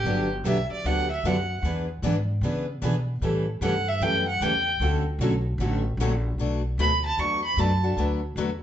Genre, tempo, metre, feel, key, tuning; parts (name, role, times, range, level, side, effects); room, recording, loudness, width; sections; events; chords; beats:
acoustic string swing (jazz manouche); 151 BPM; 4/4; swing 64% on 8ths; D major; A4 = 440 Hz
warm violin; melody; 0.0-8.0 s; G4 to C#6; -26 LUFS; right 2 dB
upright bass; bass; 0.0-8.6 s; G1 to C#3; -27 LUFS; equal
picked steel-string acoustic guitar; accompaniment; 0.1-8.5 s; B2 to B4; -30 LUFS; left 4 dB
picked steel-string acoustic guitar; accompaniment; 0.1-6.1 s; D3 to B4; -29 LUFS; right 3 dB
wet large studio reverb, RT60 0.8 s; band playing live in one room, nothing above 7.9 kHz; -23 LUFS; side -10 dB against mid
0.0-6.4 A section; 6.4-8.6 A section
violin solo 0.0-8.6
0.1 Gmaj7; 1.6 E7; 3.2 A7; 4.8 Dmaj7; 6.4 Bm7; 8.0 D69
| 0.05 0.45 0.84 1.24 | 1.64 2.03 2.43 2.83 | 3.22 3.62 4.01 4.41 | 4.81 5.20 5.60 6.00 | 6.39 6.79 7.18 7.58 | 7.98 8.37